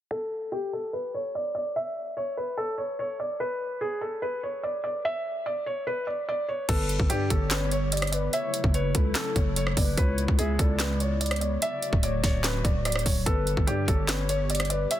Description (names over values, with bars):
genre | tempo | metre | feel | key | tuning
hip hop, trap | 146 BPM | 4/4 | half-time | unclear | A4 = 440 Hz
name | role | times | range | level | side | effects
felt-muted upright piano | melody | 0.1-15.0 s | G4 to E5 | -30 LUFS | equal | low-pass filter
gliding portamento lead | second line | 6.7-15.0 s | A4 to E5 | -34 LUFS | left 5 dB | chorus, digital delay
hollow soft pad | sustained chords | 6.7-15.0 s | C#3 to G4 | -36 LUFS | equal | ensemble chorus
growling 808-style bass | bass | 6.7-14.9 s | C#1 to G2 | -28 LUFS | equal | none
trap drum kit | drums | 6.7-15.0 s | crash cymbal, handclaps, hi-hat, kick drum, rim click, snare drum | -26 LUFS | equal | none
room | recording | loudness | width
digital ambience | dense, heavily limited modern master | -25 LUFS | side -12 dB against mid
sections
0.1-6.7 A section; 6.7-15.0 B section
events
filter sweep on felt piano 0.1-6.7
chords
0.1 N.C.; 6.7 G; 8.3 F#m7; 10.0 C#m7; 11.6 D; 13.3 G